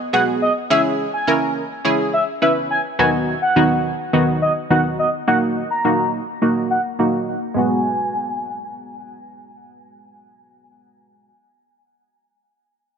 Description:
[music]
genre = dance-pop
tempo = 105 BPM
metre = 4/4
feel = straight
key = G# minor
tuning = A4 = 440 Hz
[part]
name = expressive synth lead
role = melody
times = 0.1-9.2 s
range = D#5 to A#5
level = -21 LUFS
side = equal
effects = chorus, low-pass filter, tape echo
[part]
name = punchy chord stab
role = accompaniment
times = 0.1-11.3 s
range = D#3 to B4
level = -19 LUFS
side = right 1 dB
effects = chorus, low-pass filter
[sound]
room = moderate lush hall reverb, RT60 2.9 s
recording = none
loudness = -16 LUFS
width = side -7 dB against mid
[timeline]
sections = 0.0-7.6 A section; 7.6-9.8 B section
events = filter sweep 0.0-7.6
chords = 0.0 G#m7; 0.7 C#m; 3.0 B/D#; 5.3 D#m; 7.6 G#m7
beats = 0.13 | 0.70 1.28 1.85 2.42 | 2.99 3.56 4.13 4.71 | 5.28 5.85 6.42 6.99 | 7.56 8.13 8.71 9.28

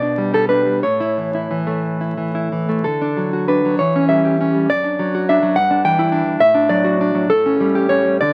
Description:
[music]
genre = romantic piece for solo classical guitar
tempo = 58-72 BPM (dotted quarters)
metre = 6/8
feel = rubato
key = D major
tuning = A4 = 440 Hz
[part]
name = nylon-string guitar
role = solo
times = 0.0-8.3 s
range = F#2 to G5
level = -17 LUFS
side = equal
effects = none
[sound]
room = light reverb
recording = very old 78 rpm record, vinyl crackle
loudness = -17 LUFS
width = mono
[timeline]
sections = 0.0-8.3 A section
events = none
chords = 0.0 G/B; 0.8 A; 2.8 D; 3.8 Em6; 4.7 D/F#; 5.6 Em7/G; 6.4 D/A; 7.3 A7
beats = | 0.82 1.83 | 2.85 3.79 | 4.68 5.55 | 6.40 7.29 | 8.22

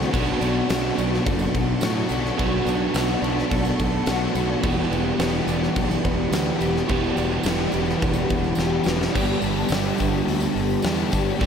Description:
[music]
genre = rock, shoegaze and dream pop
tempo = 106 BPM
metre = 4/4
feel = straight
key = G major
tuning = A4 = 440 Hz
[part]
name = picked twelve-string acoustic guitar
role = arpeggios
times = 0.0-9.2 s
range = F#3 to G4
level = -32 LUFS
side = right 6 dB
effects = lush chorus, diffuse ambient delay
[part]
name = crunchy overdriven guitar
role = riff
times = 0.0-11.5 s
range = E2 to G4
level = -25 LUFS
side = left 8 dB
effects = ensemble chorus
[part]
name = overdriven semi-hollow guitar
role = riff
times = 0.0-11.5 s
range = E2 to G4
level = -26 LUFS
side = right 10 dB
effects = reverse reverb
[part]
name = fuzz fingered electric bass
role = bass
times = 0.0-11.5 s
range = E1 to A2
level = -27 LUFS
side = equal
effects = overdrive
[part]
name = huge arena drum kit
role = drums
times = 0.0-11.5 s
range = crash cymbal, hi-hat, kick drum, snare drum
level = -27 LUFS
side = equal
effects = none
[part]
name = tambourine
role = percussion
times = 0.4-11.2 s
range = none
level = -41 LUFS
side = right 7 dB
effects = none
[sound]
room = moderate huge ambient reverb, RT60 7.7 s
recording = dreamy mix soaked in reverb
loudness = -20 LUFS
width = side -7 dB against mid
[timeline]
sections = 0.0-9.1 A section; 9.1-11.5 B section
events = drum fill 8.6-9.1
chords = 0.1 Bm7; 4.6 Em7; 9.1 G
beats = | 0.12 0.68 1.24 1.81 | 2.37 2.94 3.50 4.07 | 4.63 5.20 5.76 6.32 | 6.89 7.45 8.02 8.58 | 9.14 9.71 10.27 10.84 | 11.40

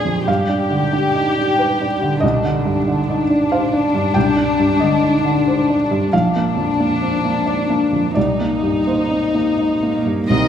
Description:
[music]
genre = neoclassical piano and strings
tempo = 84-95 BPM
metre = 3/4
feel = rubato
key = C minor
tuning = A4 = 440 Hz
[part]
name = warm chamber violin section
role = melody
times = 0.0-10.5 s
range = D4 to Eb5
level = -18 LUFS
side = left 3 dB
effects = none
[part]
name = felt-muted upright piano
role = accompaniment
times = 0.0-10.5 s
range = Bb1 to G5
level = -18 LUFS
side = right 2 dB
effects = none
[part]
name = warm cello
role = second line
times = 9.9-10.5 s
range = Bb3 to C4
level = -22 LUFS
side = right 3 dB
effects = none
[part]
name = dark viola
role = accompaniment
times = 10.3-10.5 s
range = Eb3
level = -20 LUFS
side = right 2 dB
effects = none
[sound]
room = wet recital hall reverb, RT60 1.5 s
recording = recorded in a church or concert hall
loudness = -15 LUFS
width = side -9 dB against mid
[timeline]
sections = 0.0-10.3 A section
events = none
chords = 0.3 G7; 2.2 Cmadd9; 6.1 Bb; 8.2 Cm7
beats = | 0.28 0.93 1.59 | 2.23 2.87 3.51 | 4.15 4.80 5.46 | 6.12 6.78 7.46 | 8.16 8.87 9.58 | 10.29

